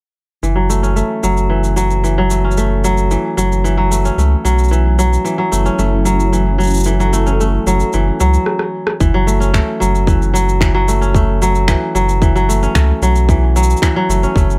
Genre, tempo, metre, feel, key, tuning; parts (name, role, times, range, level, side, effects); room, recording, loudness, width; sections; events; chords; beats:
folktronica; 112 BPM; 4/4; straight; F# minor; A4 = 440 Hz
kora; arpeggios; 0.4-14.6 s; E3 to C#4; -18 LUFS; equal; low-pass filter, delay
warm sub bass; bass; 0.4-14.6 s; F#1 to C#2; -17 LUFS; equal; tube saturation
electronic cabasa, rim click and finger snaps; drums; 0.4-14.6 s; -25 LUFS; equal
warm analog pad; sustained chords; 4.7-8.5 s; F#3 to A4; -25 LUFS; equal; chorus
electronic kick drum; drums; 9.0-14.5 s; -16 LUFS; equal
light reverb; -14 LUFS; mono
0.4-9.0 A section; 9.0-14.6 B section
filter sweep on sub bass 0.4-9.0; drum fill 8.5-9.0; stop 8.5-9.0
0.4 F#m7
| 0.43 0.97 1.50 2.04 | 2.58 3.11 3.65 4.18 | 4.72 5.25 5.79 6.33 | 6.86 7.40 7.93 8.47 | 9.00 9.54 10.08 10.61 | 11.15 11.68 12.22 12.75 | 13.29 13.83 14.36